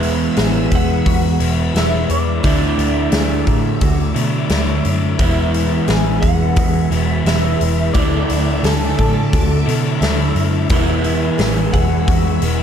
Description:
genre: rock, shoegaze and dream pop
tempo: 87 BPM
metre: 4/4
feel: straight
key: E mixolydian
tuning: A4 = 440 Hz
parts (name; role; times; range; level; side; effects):
- phased string machine; sustained chords; 0.0-12.6 s; A3 to E6; -28 LUFS; right 1 dB; ensemble chorus, phaser
- fingerpicked twelve-string acoustic guitar; arpeggios; 0.0-12.6 s; E4 to G#5; -27 LUFS; left 7 dB; lush chorus, analog delay
- crunchy overdriven guitar; riff; 0.0-12.6 s; D3 to E4; -22 LUFS; left 9 dB; wide subtle chorus
- overdriven semi-hollow guitar; riff; 0.0-12.6 s; D3 to E4; -20 LUFS; right 10 dB; reverse reverb
- vintage muted picked electric bass; bass; 0.0-12.6 s; E1 to B2; -19 LUFS; equal; none
- huge arena drum kit; drums; 0.0-12.6 s; hi-hat, kick drum, snare drum; -20 LUFS; equal; none
- electric guitar through a small old amp; melody; 0.8-12.4 s; A4 to F#5; -25 LUFS; left 1 dB; ensemble chorus, analog delay
room: small room reverb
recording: dark, warm production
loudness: -14 LUFS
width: side -8 dB against mid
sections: 0.0-12.6 A section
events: none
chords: 0.0 E; 2.5 Dsus2; 5.2 E; 8.0 Dsus2; 10.7 E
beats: 0.39 1.07 1.76 | 2.45 3.14 3.83 4.51 | 5.20 5.89 6.58 7.27 | 7.96 8.64 9.33 10.02 | 10.71 11.40 12.09

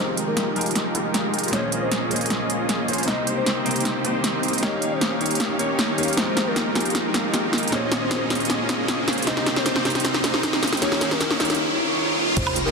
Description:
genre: future bass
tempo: 155 BPM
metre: 4/4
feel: half-time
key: F minor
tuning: A4 = 440 Hz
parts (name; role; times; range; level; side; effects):
- soft octave-layered synth lead; melody; 0.0-12.7 s; Bb4 to Eb5; -32 LUFS; left 2 dB; chorus, sidechain pumping, ping-pong delay
- warm concert grand piano; accompaniment; 0.0-12.4 s; Bb2 to Db5; -30 LUFS; left 2 dB; sidechain pumping, ping-pong delay
- ethereal airy pad; sustained chords; 0.1-11.6 s; Db3 to G5; -34 LUFS; right 1 dB; ensemble chorus, built-in reverb, sidechain pumping
- supersaw chords; riff; 0.0-12.7 s; Ab3 to F5; -26 LUFS; equal; sidechain pumping, low-pass filter, ping-pong delay
- long sustained 808-style bass; bass; 0.0-12.7 s; Eb1 to Eb2; -39 LUFS; equal; none
- riser and sub drop; sound effects; 6.1-12.7 s; none; -29 LUFS; equal; none
- big-room dance drum kit; drums; 0.2-12.6 s; crash cymbal, hi-hat, snare drum, woodblock; -23 LUFS; equal; overdrive
- electronic kick drum; drums; 12.4 s; none; -28 LUFS; equal; overdrive
room: moderate shimmer reverb, RT60 9.2 s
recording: dense, heavily limited modern master, faint mains hum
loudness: -20 LUFS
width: side -4 dB against mid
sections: 0.0-12.4 A section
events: build-up 0.0-12.4; drum fill 0.0-11.6; filter sweep on supersaw synth 0.0-12.4; filter sweep on soft synth lead 0.0-12.4; impact 12.4-12.7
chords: 0.0 Fm11; 1.5 Bbm9; 3.1 Cm7; 4.6 Eb7; 6.2 Fm11; 7.7 Bbm9; 9.3 Cm7; 10.8 Eb7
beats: 0.37 0.76 1.14 | 1.53 1.92 2.30 2.69 | 3.08 3.46 3.85 4.24 | 4.63 5.01 5.40 5.79 | 6.17 6.56 6.95 7.34 | 7.72 8.11 8.50 8.88 | 9.27 9.66 10.04 10.43 | 10.82 11.21 11.59 11.98 | 12.37

